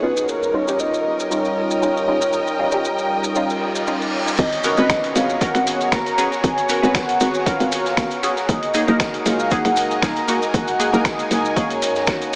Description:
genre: deep house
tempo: 117 BPM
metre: 4/4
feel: swing 54% on 16ths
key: G# dorian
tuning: A4 = 440 Hz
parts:
  - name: warm velvety synth lead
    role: melody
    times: 0.0-12.3 s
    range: A#4 to A#5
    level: -25 LUFS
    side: equal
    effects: chorus, tremolo, cassette tape, tape echo
  - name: warm analog pad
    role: sustained chords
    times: 0.0-12.4 s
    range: G3 to A#5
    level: -30 LUFS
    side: equal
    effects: chorus, vintage 12-bit sampler grit, sidechain pumping
  - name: filtered dub chord stab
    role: stabs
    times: 0.0-12.4 s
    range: G3 to B4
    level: -27 LUFS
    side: equal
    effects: phaser, sidechain pumping, tape echo
  - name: rich studio string section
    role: texture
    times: 0.0-12.4 s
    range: F#4 to G#5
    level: -28 LUFS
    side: equal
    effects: sidechain pumping
  - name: maracas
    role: percussion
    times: 0.2-12.4 s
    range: none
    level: -34 LUFS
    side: equal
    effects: none
  - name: reverse cymbal and impact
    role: sound effects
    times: 3.5-6.4 s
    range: none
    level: -33 LUFS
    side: equal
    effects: none
  - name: hollow knocking FM bass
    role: bass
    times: 4.4-12.2 s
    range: D#1 to F#2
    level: -24 LUFS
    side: equal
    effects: sidechain pumping
  - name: dusty soul sampler-style drum kit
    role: drums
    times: 4.4-12.4 s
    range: crash cymbal, finger snaps, hi-hat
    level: -28 LUFS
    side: equal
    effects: overdrive, low-pass filter on hats, low-pass filter on cymbals, low-pass filter on snare, low-pass filter on room
  - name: electronic kick drum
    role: drums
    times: 4.4-12.2 s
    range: none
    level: -26 LUFS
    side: equal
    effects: none
  - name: street-band drum kit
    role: drums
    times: 4.4-12.2 s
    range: hi-hat, snare drum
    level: -38 LUFS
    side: equal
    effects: none
room: wet huge ambient reverb, RT60 5.5 s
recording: dreamy mix soaked in reverb, small speaker sound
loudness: -20 LUFS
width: mono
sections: 0.0-4.4 A section; 4.4-12.4 B section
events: filter sweep on synth stab 0.0-4.4; reverse cymbal 3.5-4.4; drop 4.4-12.4; impact 4.4-6.4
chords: 0.3 D#9; 4.4 G#m11; 8.5 F#69

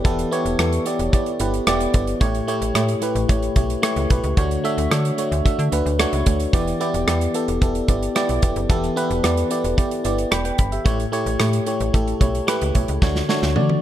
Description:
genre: 1980s-style pop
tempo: 111 BPM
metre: 4/4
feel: straight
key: E dorian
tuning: A4 = 441 Hz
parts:
  - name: FM electric piano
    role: accompaniment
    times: 0.0-13.8 s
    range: A2 to B5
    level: -21 LUFS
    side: equal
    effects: chorus
  - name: modern studio drum kit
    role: drums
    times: 0.0-13.8 s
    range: hi-hat, kick drum, rim click, snare drum, toms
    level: -21 LUFS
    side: equal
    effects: none
  - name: slap-like FM bass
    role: bass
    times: 0.1-13.8 s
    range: E1 to D3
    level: -23 LUFS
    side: equal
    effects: none
room: light reverb, small room reverb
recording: dark, warm production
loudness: -18 LUFS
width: side -12 dB against mid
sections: 0.0-13.8 A section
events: FM electric piano fill 10.0-10.9; drum fill 13.0-13.8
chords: 0.0 Em7; 2.2 A7; 4.4 Dmaj7; 6.5 Em7; 10.9 A7; 13.0 Dmaj7

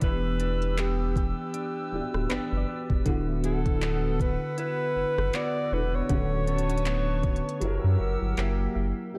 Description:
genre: contemporary R&B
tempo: 79 BPM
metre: 4/4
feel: swing 58% on 16ths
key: unclear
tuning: A4 = 444 Hz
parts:
  - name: breathy alto saxophone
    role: melody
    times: 0.0-9.2 s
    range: G4 to D5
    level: -34 LUFS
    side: equal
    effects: tape echo
  - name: dark grand piano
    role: accompaniment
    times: 0.0-9.2 s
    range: C#3 to A#4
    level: -38 LUFS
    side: equal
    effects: ensemble chorus
  - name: hollow soft pad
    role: sustained chords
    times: 0.0-9.1 s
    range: G4 to E6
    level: -40 LUFS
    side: equal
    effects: chorus
  - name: clean electric guitar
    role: arpeggios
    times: 0.0-9.2 s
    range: D3 to G4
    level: -35 LUFS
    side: equal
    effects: analog chorus, tape echo
  - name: warm sub bass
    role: bass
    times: 0.0-8.9 s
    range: D1 to F#2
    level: -31 LUFS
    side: equal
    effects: none
  - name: smooth R&B drum kit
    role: drums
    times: 0.0-8.6 s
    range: handclaps, hi-hat, kick drum, rim click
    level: -32 LUFS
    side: equal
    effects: none
  - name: soft round pluck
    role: texture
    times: 2.3-9.2 s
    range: D4 to F#5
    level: -47 LUFS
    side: equal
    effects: chorus, tape echo
room: light reverb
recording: none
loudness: -27 LUFS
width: mono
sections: 0.0-9.1 A section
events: kick muted 7.6-9.1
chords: 0.0 Em7; 3.1 D69; 6.1 Bm9/D; 7.6 F#7b9

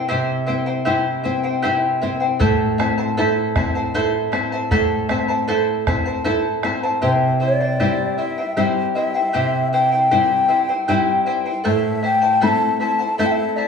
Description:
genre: andean folk, Andean ensemble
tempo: 78 BPM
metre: 3/4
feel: straight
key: unclear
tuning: A4 = 437 Hz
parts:
  - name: charango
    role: accompaniment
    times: 0.0-13.7 s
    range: E4 to A5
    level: -21 LUFS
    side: right 1 dB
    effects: none
  - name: nylon-string guitar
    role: accompaniment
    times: 0.0-13.7 s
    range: A2 to E4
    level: -22 LUFS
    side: left 2 dB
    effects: none
  - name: bombo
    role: percussion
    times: 2.4-6.8 s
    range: none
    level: -24 LUFS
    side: right 1 dB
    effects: none
  - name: breathy mellow large quena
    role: melody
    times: 7.0-13.7 s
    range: C5 to B5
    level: -20 LUFS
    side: left 2 dB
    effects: none
room: wet large studio reverb, RT60 1.3 s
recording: band playing live in one room, small room reverb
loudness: -17 LUFS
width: side -6 dB against mid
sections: 0.0-7.0 A section; 7.0-13.7 B section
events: none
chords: 0.0 C; 2.4 Am; 7.0 C; 11.7 Am

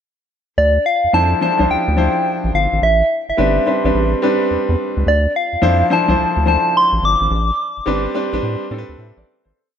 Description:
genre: R&B, new jack swing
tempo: 107 BPM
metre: 4/4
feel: swing 65% on 16ths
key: D dorian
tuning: A4 = 439 Hz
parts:
  - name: soft struck synth lead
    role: melody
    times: 0.6-8.7 s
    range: D5 to D6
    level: -16 LUFS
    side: equal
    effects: chorus
  - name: round analog bass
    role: bass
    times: 0.6-9.5 s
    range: G1 to A2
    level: -18 LUFS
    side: equal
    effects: none
  - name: clear baby grand piano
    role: accompaniment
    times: 1.1-9.7 s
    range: F3 to E5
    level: -18 LUFS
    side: left 1 dB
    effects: none
room: light reverb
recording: none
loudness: -14 LUFS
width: side -8 dB against mid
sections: 0.6-9.5 verse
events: fade-out 7.3-9.5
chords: 0.6 Dm9; 2.8 Am11; 5.1 Dm9; 7.3 Am11

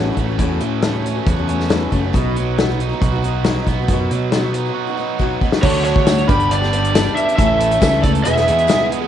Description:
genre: folk rock and heartland rock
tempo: 137 BPM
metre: 4/4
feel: straight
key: unclear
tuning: A4 = 442 Hz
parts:
  - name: picked steel-string acoustic guitar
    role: accompaniment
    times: 0.0-9.1 s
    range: E2 to A4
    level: -23 LUFS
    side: left 9 dB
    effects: none
  - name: overdriven electric guitar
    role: riff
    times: 0.0-9.1 s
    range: E2 to A4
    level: -23 LUFS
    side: right 13 dB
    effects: none
  - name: picked electric bass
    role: bass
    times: 0.0-8.7 s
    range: E1 to B2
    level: -20 LUFS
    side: right 1 dB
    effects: none
  - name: natural country drum kit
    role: drums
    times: 0.2-9.0 s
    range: crash cymbal, hi-hat, kick drum, snare drum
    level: -19 LUFS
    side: left 1 dB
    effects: none
  - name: lead guitar through a small cranked amp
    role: melody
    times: 5.6-8.9 s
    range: C#5 to B5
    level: -17 LUFS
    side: right 1 dB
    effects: overdrive
  - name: warm upright piano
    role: accompaniment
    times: 5.6-9.1 s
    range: D4 to F#5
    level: -29 LUFS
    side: right 12 dB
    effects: none
  - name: hand-pumped harmonium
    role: sustained chords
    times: 5.6-9.1 s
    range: G#3 to B4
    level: -30 LUFS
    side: right 12 dB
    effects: none
  - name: tambourine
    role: percussion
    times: 6.1-8.8 s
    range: none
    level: -33 LUFS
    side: right 15 dB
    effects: none
room: light reverb, small room ambience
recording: 1960s-style stereo with parts hard left and right, nothing above 10.5 kHz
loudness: -14 LUFS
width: side -10 dB against mid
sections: 0.0-5.6 A section; 5.6-9.1 B section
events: drum fill 5.2-5.6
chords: 0.0 A6; 2.1 B; 5.6 D; 6.3 G; 7.4 A; 8.2 E

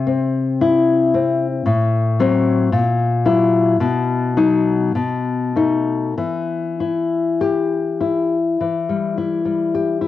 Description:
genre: romantic piece for solo classical guitar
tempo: 47-57 BPM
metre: 2/4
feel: rubato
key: E minor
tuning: A4 = 444 Hz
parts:
  - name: nylon-string guitar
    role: solo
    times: 0.0-10.1 s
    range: A2 to G4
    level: -16 LUFS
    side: left 3 dB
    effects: cassette tape
room: light reverb, small room ambience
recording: home recording on cassette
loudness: -16 LUFS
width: side -13 dB against mid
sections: 0.0-8.6 A section; 8.6-10.1 A section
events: none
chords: 0.0 C; 1.7 F#dim/A; 2.7 F#7/A#; 3.8 B; 4.9 B7; 6.2 Em

